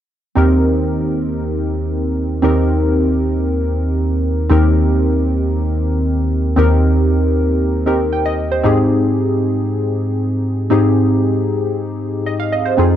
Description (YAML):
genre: pop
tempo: 116 BPM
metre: 4/4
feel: straight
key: Eb major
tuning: A4 = 440 Hz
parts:
  - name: glassy digital keys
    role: solo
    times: 0.4-13.0 s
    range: Eb2 to G5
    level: -14 LUFS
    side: equal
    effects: chorus
room: moderate booth ambience, RT60 0.2 s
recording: dry, close 1970s-style studio recording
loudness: -14 LUFS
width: side -10 dB against mid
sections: 0.4-4.5 A section; 4.5-13.0 B section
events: none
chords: 0.4 Eb6; 8.6 Abmaj7